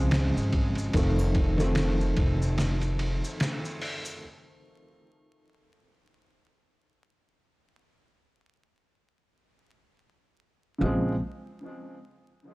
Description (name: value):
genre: trip hop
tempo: 73 BPM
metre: 4/4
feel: swing 56% on 16ths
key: Bb minor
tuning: A4 = 438 Hz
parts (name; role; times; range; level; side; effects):
- felt-muted upright piano; accompaniment; 0.0-4.3, 10.8-11.1 s; Db3 to C4; -30 LUFS; equal; harmonic tremolo, tape echo
- upright bass; bass; 0.0-3.2, 10.8-11.2 s; F1 to Db2; -27 LUFS; equal; none
- trip hop sampler-style drum kit; drums; 0.1-4.0 s; hi-hat, kick drum, ride cymbal, snare drum; -29 LUFS; equal; overdrive
- maracas and triangle; percussion; 0.1-4.2 s; none; -45 LUFS; equal; none
room: small room reverb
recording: dry, gritty hardware recording, vinyl crackle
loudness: -24 LUFS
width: side -23 dB against mid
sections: 0.0-10.8 A section; 10.8-12.5 B section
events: none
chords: 0.0 Bbm7 (rootless); 0.9 F7; 4.2 N.C.; 10.8 Bbm7